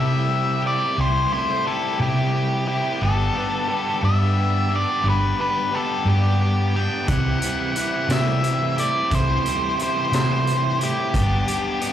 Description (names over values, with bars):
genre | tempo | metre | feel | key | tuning
indie rock | 59 BPM (dotted quarters) | 6/8 | straight | unclear | A4 = 441 Hz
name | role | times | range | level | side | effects
octave-fuzz lead guitar | melody | 0.0-11.9 s | G4 to G5 | -24 LUFS | left 1 dB | distortion, slapback echo
crunchy overdriven guitar | riff | 0.0-11.9 s | E3 to G4 | -26 LUFS | left 4 dB | slapback echo
overdriven electric guitar | riff | 0.0-11.9 s | G2 to G4 | -29 LUFS | right 9 dB | ensemble chorus, slapback echo
hollow-body short-scale fingered electric bass | bass | 0.0-11.4 s | G1 to C3 | -21 LUFS | equal | none
raw garage drum kit | drums | 7.1-11.9 s | hi-hat, kick drum, snare drum | -27 LUFS | equal | none
room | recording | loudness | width
light reverb | live gig heard through the venue's PA, club reverb | -19 LUFS | side -10 dB against mid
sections
0.0-11.9 A section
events
none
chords
0.0 C6; 3.0 G; 7.1 C6; 11.1 G